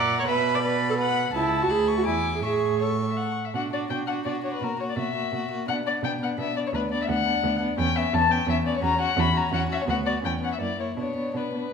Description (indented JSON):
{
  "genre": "quick classical-period movement for string quartet",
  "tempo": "169 BPM",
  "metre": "3/4",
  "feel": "straight",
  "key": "A major, B minor from 3.5 s",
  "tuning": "A4 = 441 Hz",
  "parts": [
    { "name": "dark violin", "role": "melody", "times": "0.0-11.7 s", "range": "A#4 to B5", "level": "-27 LUFS", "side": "left 7 dB", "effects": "none" },
    { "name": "rich violin", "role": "second line", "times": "0.0-11.7 s", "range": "C#4 to D6", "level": "-32 LUFS", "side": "left 2 dB", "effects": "none" },
    { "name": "warm viola", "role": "accompaniment", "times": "0.0-11.7 s", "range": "A#3 to D5", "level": "-28 LUFS", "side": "right 3 dB", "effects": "none" },
    { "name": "rich cello", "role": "bass", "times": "0.0-11.7 s", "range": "C#2 to B2", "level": "-29 LUFS", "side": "right 3 dB", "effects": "none" }
  ],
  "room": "wet recital hall reverb, RT60 1.4 s",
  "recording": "minimal, uncompressed stereo recording",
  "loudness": "-23 LUFS",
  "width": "side -6 dB against mid",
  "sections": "0.0-3.5 A section; 3.5-11.7 B section",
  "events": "none",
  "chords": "0.3 Bm; 1.3 A/C#; 1.7 Bm/D; 2.1 E7; 2.4 A; 3.5 Bm; 4.6 F#7/B; 5.7 Bm; 6.7 Bm/D; 7.8 Em6; 8.8 F#5/E; 9.9 Bm/D; 10.2 C#m7/E; 10.6 F#7; 11.0 Bm"
}